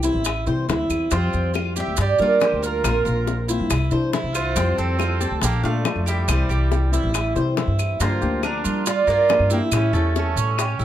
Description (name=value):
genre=latin, Cuban son and guajira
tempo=140 BPM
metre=4/4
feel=straight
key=unclear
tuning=A4 = 440 Hz
part: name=flamenco guitar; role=accompaniment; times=0.0-10.6 s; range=C3 to G4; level=-27 LUFS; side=left 3 dB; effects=none
part: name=Cuban tres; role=arpeggios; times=0.0-10.8 s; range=A3 to D5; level=-27 LUFS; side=right 2 dB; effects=none
part: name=upright bass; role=bass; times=0.0-10.8 s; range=A1 to G3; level=-22 LUFS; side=equal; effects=none
part: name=maracas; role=percussion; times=0.0-10.8 s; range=none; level=-31 LUFS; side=right 10 dB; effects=none
part: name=bongos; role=percussion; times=0.3-10.8 s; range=none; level=-29 LUFS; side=left 8 dB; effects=none
part: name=claves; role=percussion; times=0.3-10.8 s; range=none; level=-31 LUFS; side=left 5 dB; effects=none
part: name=Cuban tres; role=melody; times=1.1-10.8 s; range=E4 to E5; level=-24 LUFS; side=right 3 dB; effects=none
part: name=clear trumpet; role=second line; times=1.1-10.8 s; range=G3 to G4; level=-30 LUFS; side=right 6 dB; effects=none
room=light reverb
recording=close, detailed microphones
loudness=-18 LUFS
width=side -12 dB against mid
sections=0.0-8.0 A section; 8.0-10.8 B section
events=none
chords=0.0 C; 1.1 Fsus2; 2.0 Gm; 2.8 Bbsus2; 3.7 Cadd9; 4.6 Fsus2; 5.4 Bbmaj7; 6.3 C; 8.0 Gm7; 9.7 A7